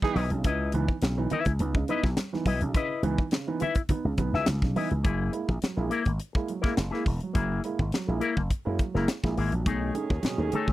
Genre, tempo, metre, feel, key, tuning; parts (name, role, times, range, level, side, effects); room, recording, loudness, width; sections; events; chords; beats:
funk; 104 BPM; 4/4; straight; A4 = 440 Hz
clear horn section; second line; 0.0-0.3, 9.7-10.7 s; D#3 to G#4; -34 LUFS; right 6 dB
dark upright piano; stabs; 0.0-10.6 s; B2 to G#4; -33 LUFS; right 4 dB
crisp fusion drum kit; drums; 0.0-10.7 s; hi-hat, kick drum, snare drum; -28 LUFS; equal
congas; percussion; 0.0-4.9, 10.0-10.7 s; -34 LUFS; right 3 dB
electric guitar with an envelope filter; accompaniment; 0.1-10.7 s; A3 to E5; -30 LUFS; left 6 dB
slap bass with an envelope filter; bass; 0.2-10.7 s; E1 to F#2; -28 LUFS; equal
little or no reverb; dry, close 1970s-style studio recording; -25 LUFS; side -16 dB against mid
0.0-5.0 A section; 5.0-10.7 B section
0.0 C#m9; 5.0 F#9; 9.7 B13
| 0.44 1.02 1.59 2.17 | 2.74 3.32 3.90 4.47 | 5.05 5.62 6.20 6.78 | 7.35 7.93 8.51 9.08 | 9.66 10.24